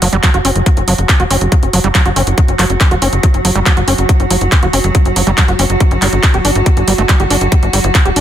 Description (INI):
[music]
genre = psychedelic trance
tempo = 140 BPM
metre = 4/4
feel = straight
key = unclear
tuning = A4 = 438 Hz
[part]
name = evolving wavetable pad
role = sustained chords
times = 0.0-8.2 s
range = F#3 to F#4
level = -19 LUFS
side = right 2 dB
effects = chorus, built-in reverb, sidechain pumping
[part]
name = overdriven acid bass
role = riff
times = 0.0-8.2 s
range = F#3 to G4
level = -17 LUFS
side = equal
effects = distortion, auto-pan, sidechain pumping, ping-pong delay
[part]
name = tight sequencer bass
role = bass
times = 0.0-8.2 s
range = D1 to G1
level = -15 LUFS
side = equal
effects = none
[part]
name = techno drum kit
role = drums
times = 0.0-8.2 s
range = handclaps, hi-hat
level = -16 LUFS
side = right 1 dB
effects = overdrive
[part]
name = electronic kick drum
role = drums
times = 0.2-8.0 s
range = none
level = -11 LUFS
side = equal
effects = none
[sound]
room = little or no reverb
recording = dense, heavily limited modern master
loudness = -9 LUFS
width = side -11 dB against mid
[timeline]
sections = 0.0-8.2 A section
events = none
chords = 0.0 F#5; 5.8 G5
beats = 0.23 | 0.66 1.09 1.52 1.95 | 2.38 2.81 3.23 3.66 | 4.09 4.52 4.95 5.38 | 5.80 6.23 6.66 7.09 | 7.52 7.95